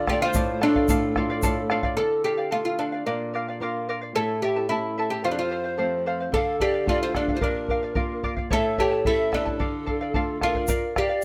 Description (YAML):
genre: andean folk, Andean ensemble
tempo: 110 BPM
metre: 2/4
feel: straight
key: D minor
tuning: A4 = 440 Hz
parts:
  - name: oud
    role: melody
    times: 0.0-11.2 s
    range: D4 to A4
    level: -28 LUFS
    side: equal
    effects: none
  - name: breathy mellow pan flute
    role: second line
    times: 0.0-1.7, 5.3-11.2 s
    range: A4 to F5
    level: -32 LUFS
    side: equal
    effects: none
  - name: charango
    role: accompaniment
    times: 0.0-11.2 s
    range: E4 to A5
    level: -32 LUFS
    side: equal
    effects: none
  - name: flamenco guitar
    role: accompaniment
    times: 0.0-10.7 s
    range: F2 to F4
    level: -33 LUFS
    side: equal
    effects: none
  - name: bombo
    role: percussion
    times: 0.1-2.0, 6.3-11.1 s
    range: none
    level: -31 LUFS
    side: equal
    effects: none
  - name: egg shaker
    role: percussion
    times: 0.3-1.6, 10.7-10.8 s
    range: none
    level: -36 LUFS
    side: equal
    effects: none
room: light reverb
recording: none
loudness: -25 LUFS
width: mono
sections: 0.0-2.0 A section; 2.0-10.7 B section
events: none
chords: 0.0 Dm; 3.1 Bb; 4.2 A; 5.2 F; 6.3 Dm; 7.4 Bb; 8.5 A; 9.6 Dm; 10.7 Bb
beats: 0.35 | 0.89 1.43 | 1.98 2.52 | 3.06 3.61 | 4.15 4.70 | 5.24 5.79 | 6.33 6.88 | 7.42 7.97 | 8.51 9.05 | 9.60 10.14 | 10.69 11.23